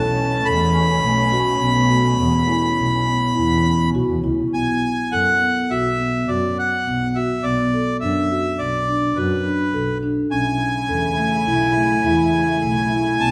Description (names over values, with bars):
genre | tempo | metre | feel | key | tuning
contemporary instrumental, chamber music in an uneven meter | 104 BPM | 5/4 | straight | B dorian | A4 = 440 Hz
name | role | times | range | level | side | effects
accordion | melody | 0.0-13.3 s | B4 to B5 | -23 LUFS | equal | none
muted studio string section | sustained chords | 0.0-4.5, 10.3-13.3 s | B2 to E4 | -30 LUFS | equal | none
marimba with soft mallets | arpeggios | 0.0-13.3 s | A3 to A4 | -24 LUFS | equal | none
dark double bass | bass | 0.0-13.3 s | B1 to F#2 | -26 LUFS | equal | none
room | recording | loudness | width
wet recital hall reverb, RT60 1.5 s | none | -19 LUFS | mono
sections
0.0-4.5 A section; 4.5-13.3 B section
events
none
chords
0.0 Aadd9/B; 4.5 Bm; 10.3 A/B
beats
0.46 1.03 | 1.61 2.18 2.76 3.35 3.94 | 4.53 5.12 5.70 6.28 6.85 | 7.43 8.01 8.59 9.16 9.73 | 10.30 10.88 11.46 12.04 12.62 | 13.20